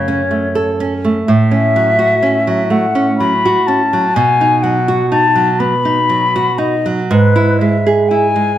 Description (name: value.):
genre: romantic duo for flute and classical guitar.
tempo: 39-42 BPM (dotted quarters).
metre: 6/8.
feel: rubato.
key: unclear.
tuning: A4 = 440 Hz.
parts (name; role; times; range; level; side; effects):
mellow silver concert flute; melody; 0.0-8.6 s; B4 to B5; -14 LUFS; left 4 dB; none.
nylon-string guitar; accompaniment; 0.0-8.6 s; F#2 to A4; -13 LUFS; right 3 dB; none.
room: moderate recital hall reverb, RT60 1.4 s.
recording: faint mains hum.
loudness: -11 LUFS.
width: side -12 dB against mid.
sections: 0.0-8.6 A section.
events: none.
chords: 0.0 F#m; 1.3 F#m/A; 4.1 B; 7.1 E/G#.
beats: | 1.26 2.70 | 4.13 5.57 | 7.09.